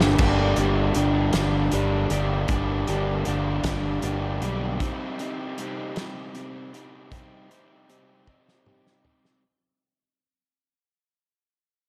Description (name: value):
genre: indie rock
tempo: 52 BPM (dotted quarters)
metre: 6/8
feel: straight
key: G minor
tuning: A4 = 440 Hz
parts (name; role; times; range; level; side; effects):
- overdriven semi-hollow guitar; riff; 0.0-9.4 s; G2 to G4; -28 LUFS; equal; none
- growling fingered electric bass; bass; 0.0-4.8 s; G1 to B1; -28 LUFS; equal; overdrive
- loose indie drum kit; drums; 0.0-9.4 s; crash cymbal, hi-hat, kick drum, snare drum, toms; -30 LUFS; equal; none
room: moderate plate reverb, RT60 2.3 s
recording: dreamy mix soaked in reverb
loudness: -25 LUFS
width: mono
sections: 0.2-9.4 A section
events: drum fill 0.0, 8.3-9.4; fade-out 0.2-9.4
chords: 0.2 Gm; 4.8 Cm